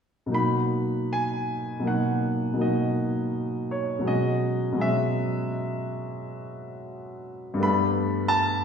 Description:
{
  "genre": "classical, impressionist solo piano",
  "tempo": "75-91 BPM",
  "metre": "5/4",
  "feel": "rubato",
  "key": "B major",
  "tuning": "A4 = 442 Hz",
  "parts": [
    { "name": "clear concert grand piano", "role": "solo", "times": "0.3-8.6 s", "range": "G2 to B5", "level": "-24 LUFS", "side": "equal", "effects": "none" }
  ],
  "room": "wet recital hall reverb, RT60 1.6 s",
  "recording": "recorded in a church or concert hall",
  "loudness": "-24 LUFS",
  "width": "side -7 dB against mid",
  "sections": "0.4-8.6 A section",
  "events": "none",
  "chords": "0.4 Bmaj7; 4.1 E69/B; 7.6 Gadd9"
}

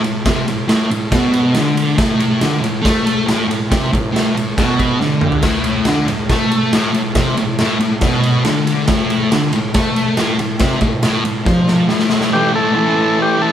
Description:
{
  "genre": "garage rock duo or trio",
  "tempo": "139 BPM",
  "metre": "4/4",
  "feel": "straight",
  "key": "A minor",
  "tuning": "A4 = 440 Hz",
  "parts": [
    { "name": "thick fuzz guitar", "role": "riff", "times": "0.0-13.5 s", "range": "A2 to A3", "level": "-16 LUFS", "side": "left 1 dB", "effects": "distortion" },
    { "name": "raw garage drum kit", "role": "drums", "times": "0.0-12.3 s", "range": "crash cymbal, kick drum, ride cymbal, snare drum, toms", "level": "-17 LUFS", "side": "right 1 dB", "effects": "none" },
    { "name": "overdriven combo organ", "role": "melody", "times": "12.3-13.5 s", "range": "G4 to A4", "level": "-15 LUFS", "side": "equal", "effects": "none" }
  ],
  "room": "moderate large studio reverb, RT60 1.0 s",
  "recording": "band playing live in one room",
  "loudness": "-13 LUFS",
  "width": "side -10 dB against mid",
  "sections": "0.0-12.3 A section; 12.3-13.5 B section",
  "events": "drum fill 5.0-5.4, 11.5-12.3",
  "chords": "0.0 N.C.; 12.3 A5"
}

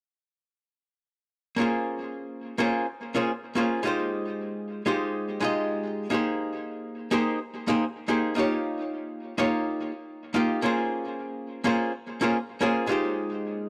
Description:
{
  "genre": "chillout",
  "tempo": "106 BPM",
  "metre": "4/4",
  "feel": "swing 57% on 16ths",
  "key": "unclear",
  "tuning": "A4 = 440 Hz",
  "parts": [
    { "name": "archtop guitar, miked and amplified", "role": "accompaniment", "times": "1.6-13.7 s", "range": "Ab3 to F5", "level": "-28 LUFS", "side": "equal", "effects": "tape echo" }
  ],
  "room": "light reverb",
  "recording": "dry, gritty hardware recording",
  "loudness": "-28 LUFS",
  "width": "mono",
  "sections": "1.6-13.7 A section",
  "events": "none",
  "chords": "1.6 Bbm7; 3.8 Fm7; 6.1 Abmaj9; 8.4 Eb7; 10.6 Bbm7; 12.9 Fm7"
}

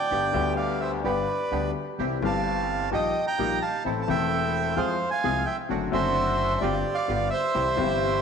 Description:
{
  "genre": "tango",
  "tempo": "129 BPM",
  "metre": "4/4",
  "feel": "rubato",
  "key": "unclear",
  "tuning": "A4 = 441 Hz",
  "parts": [
    { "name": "bandoneon", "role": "melody", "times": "0.0-8.2 s", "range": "G4 to Bb5", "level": "-26 LUFS", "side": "right 3 dB", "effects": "none" },
    { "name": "warm grand piano", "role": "accompaniment", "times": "0.1-8.2 s", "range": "E1 to A4", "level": "-28 LUFS", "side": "left 8 dB", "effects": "none" },
    { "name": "bandoneon", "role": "stabs", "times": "0.1-8.2 s", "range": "E3 to A4", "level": "-34 LUFS", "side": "right 6 dB", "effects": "none" },
    { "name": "upright bass", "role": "bass", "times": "0.1-8.2 s", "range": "E1 to F2", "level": "-34 LUFS", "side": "right 1 dB", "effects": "none" }
  ],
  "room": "wet echo chamber reverb, RT60 2.4 s",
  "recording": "1960s-style stereo with parts hard left and right",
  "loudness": "-23 LUFS",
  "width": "side -6 dB against mid",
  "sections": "0.0-8.2 A section",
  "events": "none",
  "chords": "0.1 G; 2.0 C; 2.9 Eb/Bb; 3.8 Am; 4.8 Fm; 5.7 D7/F#; 6.6 G7sus4; 7.1 G7; 7.5 C"
}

